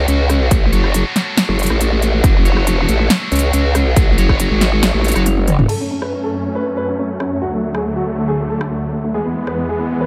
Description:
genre	heavy wobble dubstep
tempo	139 BPM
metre	4/4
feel	half-time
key	F# minor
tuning	A4 = 441 Hz
part	high-gain distorted guitar	stabs	0.0-5.2 s	F#4 to C#5	-24 LUFS	equal	distortion, dub echo
part	growl bass	bass	0.0-5.7 s	E1 to C#2	-17 LUFS	equal	chorus, overdrive
part	big-room dance drum kit	drums	0.1-9.6 s	crash cymbal, hi-hat, rim click, snare drum, toms	-21 LUFS	equal	overdrive, studio reverb
part	electronic kick drum	drums	0.5-4.4 s	none	-16 LUFS	equal	overdrive, studio reverb
part	dark grand piano	melody	5.7-10.1 s	A3 to B4	-23 LUFS	equal	dub echo
part	supersaw chords	sustained chords	5.7-10.1 s	D2 to C#4	-24 LUFS	equal	sidechain pumping, low-pass filter
room	light reverb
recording	none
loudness	-16 LUFS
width	mono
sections	0.0-5.7 A section; 5.7-10.1 B section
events	drop 0.0-5.7; drum fill 5.3-5.7; filter sweep on supersaw synth 5.7-10.1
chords	0.0 F#m; 7.4 D; 9.1 E

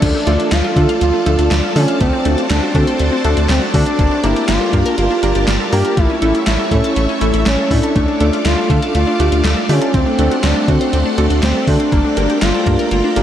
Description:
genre	synth-pop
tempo	121 BPM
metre	4/4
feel	straight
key	unclear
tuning	A4 = 440 Hz
part	expressive portamento lead	melody	0.0-13.2 s	C4 to G4	-18 LUFS	equal	chorus, tape echo
part	string machine, violins	sustained chords	0.0-13.2 s	A3 to D6	-22 LUFS	equal	ensemble chorus
part	resonant blip pluck	arpeggios	0.0-13.2 s	F3 to A5	-24 LUFS	equal	phaser, tape echo
part	round analog bass	bass	0.0-13.2 s	G1 to D3	-16 LUFS	equal	none
part	gated 80s digital drum machine	drums	0.0-13.2 s	crash cymbal, handclaps, hi-hat, kick drum, snare drum	-20 LUFS	equal	gated reverb, gated reverb snare
part	funky polysynth comp	accompaniment	0.3-13.2 s	A3 to Bb4	-20 LUFS	equal	chorus
room	wet huge ambient reverb, RT60 7.8 s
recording	dreamy mix soaked in reverb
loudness	-12 LUFS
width	side -10 dB against mid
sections	0.0-13.2 A section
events	none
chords	0.0 Dm; 2.0 D7; 4.0 Gmadd9; 6.0 A; 8.0 Dm; 9.9 D7; 11.9 Gmadd9

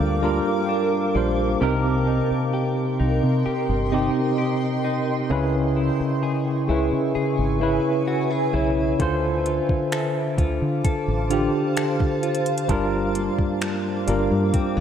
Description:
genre	contemporary R&B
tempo	65 BPM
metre	4/4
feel	straight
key	unclear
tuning	A4 = 437 Hz
part	tine electric piano	accompaniment	0.0-14.8 s	C3 to C#5	-22 LUFS	right 1 dB	medium stereo tremolo
part	granular cloud pad	sustained chords	0.0-14.8 s	Bb3 to D6	-28 LUFS	right 1 dB	built-in reverb, lush chorus
part	direct-recorded clean electric guitar	arpeggios	0.0-14.8 s	G2 to A4	-30 LUFS	left 4 dB	analog chorus, diffuse ambient delay
part	deep dub fingered electric bass	bass	0.0-14.8 s	G1 to D3	-25 LUFS	equal	none
part	smooth R&B drum kit	drums	9.0-14.8 s	finger snaps, hi-hat, kick drum	-25 LUFS	equal	none
room	moderate plate reverb, RT60 2.7 s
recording	dreamy mix soaked in reverb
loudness	-20 LUFS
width	side -8 dB against mid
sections	0.0-14.8 A section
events	none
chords	0.0 Gm7; 1.6 Cm7; 5.3 C#m7; 9.0 Dm7; 12.7 Gm7

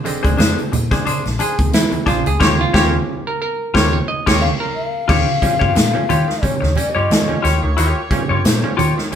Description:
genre	funk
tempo	89 BPM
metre	4/4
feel	swing 56% on 16ths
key	unclear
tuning	A4 = 437 Hz
part	semi-hollow electric guitar	accompaniment	0.0-9.2 s	D4 to Db5	-21 LUFS	left 3 dB	none
part	bright clav	stabs	0.0-9.2 s	D3 to Eb5	-24 LUFS	right 3 dB	none
part	swinging big-band drum kit	drums	0.1-9.2 s	crash cymbal, hi-hat, kick drum, snare drum	-18 LUFS	equal	none
part	congas	percussion	0.1-9.2 s	none	-26 LUFS	right 4 dB	none
part	vintage muted fingered electric bass	bass	0.2-9.2 s	Bb1 to Eb3	-20 LUFS	equal	none
part	tambourine	percussion	0.4-1.9 s	none	-36 LUFS	left 3 dB	none
part	clear horn section	second line	2.4-9.2 s	Bb3 to Db5	-25 LUFS	equal	none
part	bansuri	melody	4.4-7.4 s	Db5 to F5	-21 LUFS	left 5 dB	none
room	light reverb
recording	band playing live in one room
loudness	-14 LUFS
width	side -9 dB against mid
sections	0.0-5.1 A section; 5.1-9.2 B section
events	clav solo 0.0-5.1; band accent 2.4-5.1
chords	0.0 Bb9; 2.4 Eb9

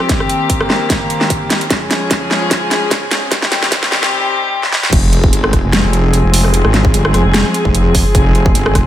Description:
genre	heavy wobble dubstep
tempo	149 BPM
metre	4/4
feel	swing 54% on 16ths, half-time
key	F minor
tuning	A4 = 441 Hz
part	rich chamber string section	sustained chords	0.0-8.9 s	Eb3 to Ab4	-17 LUFS	left 2 dB	sidechain pumping, low-pass filter
part	dubstep drum kit	drums	0.0-8.8 s	crash cymbal, hi-hat, rim click, snare drum	-16 LUFS	equal	high-pass filter on snare, studio reverb, high-pass filter on hats, high-pass filter on cymbals
part	electronic kick drum	drums	0.1-8.8 s	none	-15 LUFS	equal	studio reverb
part	wobble bass	bass	4.9-8.8 s	F1 to Ab1	-13 LUFS	equal	chorus, overdrive
room	light reverb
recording	high-pass filter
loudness	-11 LUFS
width	side -12 dB against mid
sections	0.0-4.9 A section; 4.9-8.9 B section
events	build-up 0.0-4.9; drum fill 0.0-4.1, 4.6-4.9; filter sweep on string section 0.0-4.9; filter sweep 0.0-4.9; drop 4.9-8.9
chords	0.1 Eb6; 1.7 Db; 3.3 Cm; 4.9 Fm

